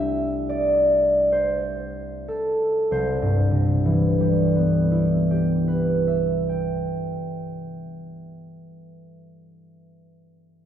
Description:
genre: classical, solo harp piece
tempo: 44-57 BPM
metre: 4/4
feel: rubato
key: C major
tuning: A4 = 441 Hz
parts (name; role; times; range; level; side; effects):
- concert harp; solo; 0.0-9.1 s; C2 to G5; -20 LUFS; equal; none
room: wet church reverb, RT60 2.9 s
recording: dark, warm production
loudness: -19 LUFS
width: side -9 dB against mid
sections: 0.0-2.9 A section; 2.9-7.6 B section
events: slowing down 0.0-2.9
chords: 0.0 C69; 2.9 Cmaj7

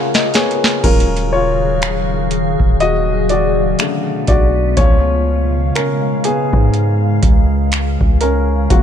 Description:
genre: contemporary R&B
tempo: 61 BPM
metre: 4/4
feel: swing 58% on 16ths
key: unclear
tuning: A4 = 439 Hz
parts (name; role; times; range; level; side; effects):
- dark baby grand piano; accompaniment; 0.0-8.8 s; Db3 to Ab5; -18 LUFS; left 2 dB; none
- glassy FM pad; sustained chords; 0.0-8.8 s; Db3 to F5; -20 LUFS; left 1 dB; ensemble chorus, built-in reverb
- booming analog drum machine; drums; 0.1-8.8 s; crash cymbal, finger snaps, hi-hat, kick drum, snare drum; -15 LUFS; equal; vintage 12-bit sampler grit
- long sustained 808-style bass; bass; 0.8-8.8 s; Eb1 to Ab2; -17 LUFS; equal; none
room: digital ambience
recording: none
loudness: -12 LUFS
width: side -9 dB against mid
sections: 0.8-8.8 A section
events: drum fill 0.0-0.8; grand piano fill 0.0-0.8; grand piano solo 0.8-8.8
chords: 0.0 Bbm7/Db; 0.8 Ebm11; 3.8 Bm7; 4.8 Db7

